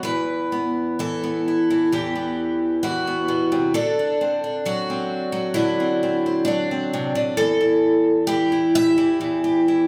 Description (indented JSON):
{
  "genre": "folk, solo fingerstyle acoustic guitar",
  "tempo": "66 BPM",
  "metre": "4/4",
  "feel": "rubato",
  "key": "E minor",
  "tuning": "A4 = 442 Hz",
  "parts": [
    { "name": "picked twelve-string acoustic guitar", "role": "solo", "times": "0.0-9.9 s", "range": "E2 to E5", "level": "-21 LUFS", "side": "equal", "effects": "none" }
  ],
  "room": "moderate recital hall reverb, RT60 1.3 s",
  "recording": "recorded in a church or concert hall",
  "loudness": "-21 LUFS",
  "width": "mono",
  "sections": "0.1-9.9 A section",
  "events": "none",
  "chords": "0.1 Emadd9; 3.8 D7; 7.4 Em",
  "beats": "| 0.05 1.00 1.93 2.84 | 3.75 4.66 5.56 6.46 | 7.37 8.29 9.21"
}